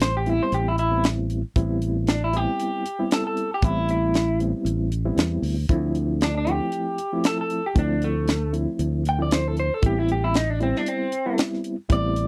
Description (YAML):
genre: straight-eighth soul blues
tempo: 116 BPM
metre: 4/4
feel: swing 55% on 16ths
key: A minor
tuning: A4 = 443 Hz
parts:
  - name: electric guitar through a small old amp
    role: melody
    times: 0.0-12.3 s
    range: A3 to G5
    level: -28 LUFS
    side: equal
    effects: none
  - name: overdriven reed electric piano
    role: accompaniment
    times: 0.0-12.3 s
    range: F3 to E4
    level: -30 LUFS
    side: equal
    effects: fast tremolo
  - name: fingered electric bass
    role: bass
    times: 0.0-12.3 s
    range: A1 to E2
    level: -27 LUFS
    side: equal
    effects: none
  - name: tight funk drum kit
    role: drums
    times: 0.0-12.3 s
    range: hi-hat, kick drum, snare drum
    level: -25 LUFS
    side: equal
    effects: none
room: light reverb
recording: dry, close 1970s-style studio recording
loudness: -24 LUFS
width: mono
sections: 0.0-12.3 A section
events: clean electric guitar solo 0.0-12.3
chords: 0.0 Am7; 5.7 Dm7; 9.8 Am7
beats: 0.00 0.52 1.04 | 1.55 2.07 2.59 3.11 | 3.62 4.14 4.66 5.17 | 5.69 6.21 6.72 7.24 | 7.76 8.27 8.79 9.31 | 9.82 10.34 10.86 11.38 | 11.89